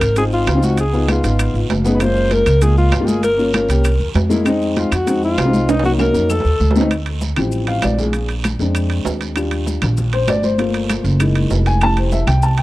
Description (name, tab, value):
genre	Afro-Cuban jazz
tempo	196 BPM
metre	4/4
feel	straight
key	D minor from 6.9 s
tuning	A4 = 440 Hz
part	breathy alto saxophone	melody	0.0-6.8 s	Eb4 to C5	-19 LUFS	left 1 dB	none
part	upright bass	bass	0.0-12.6 s	F1 to F2	-17 LUFS	equal	none
part	claves	percussion	0.0-12.4 s	none	-30 LUFS	left 4 dB	none
part	congas	percussion	0.0-12.6 s	none	-24 LUFS	left 1 dB	none
part	guiro	percussion	0.0-12.6 s	none	-34 LUFS	right 8 dB	none
part	maracas	percussion	0.0-12.6 s	none	-37 LUFS	left 6 dB	none
part	timbales	percussion	0.0-12.6 s	none	-24 LUFS	right 6 dB	none
part	dark upright piano	accompaniment	0.2-12.6 s	F3 to A5	-19 LUFS	left 2 dB	none
room	small room ambience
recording	dry, close 1970s-style studio recording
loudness	-14 LUFS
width	side -17 dB against mid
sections	0.0-6.9 A section; 6.9-12.6 B section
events	drum fill 5.7-6.9; upright piano solo 6.9-12.6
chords	0.0 Dbmaj9; 0.8 Db7; 2.0 Gbmaj7; 3.2 Gm7b5; 3.8 C7b13; 4.5 Fm7; 5.7 Cm7b5; 6.3 F7; 6.9 Dm11; 8.1 Bb7; 9.4 Ebmaj7; 10.6 Gm7; 11.2 F#13; 11.8 Fmaj9